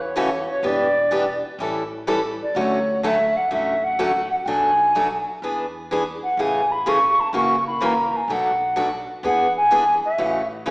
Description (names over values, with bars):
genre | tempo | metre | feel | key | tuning
acoustic string swing (jazz manouche) | 126 BPM | 4/4 | swing 64% on 8ths | A major | A4 = 440 Hz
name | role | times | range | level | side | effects
mellow hollow silver concert flute | melody | 0.0-10.5 s | C#5 to C#6 | -19 LUFS | equal | none
upright bass | bass | 0.0-10.7 s | E1 to E2 | -36 LUFS | equal | none
picked steel-string acoustic guitar | accompaniment | 0.2-10.7 s | B2 to A4 | -23 LUFS | equal | none
room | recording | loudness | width
wet scoring stage reverb, RT60 1.6 s | recorded in a church or concert hall, small speaker sound | -18 LUFS | side -26 dB against mid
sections
0.0-10.7 A section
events
none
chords
0.0 A6; 0.6 Em7; 1.6 A7; 2.6 Dmaj7; 4.5 Bm7; 5.4 E7; 6.4 Amaj7; 7.3 F#7; 8.3 Bm7; 9.2 E7; 10.2 A6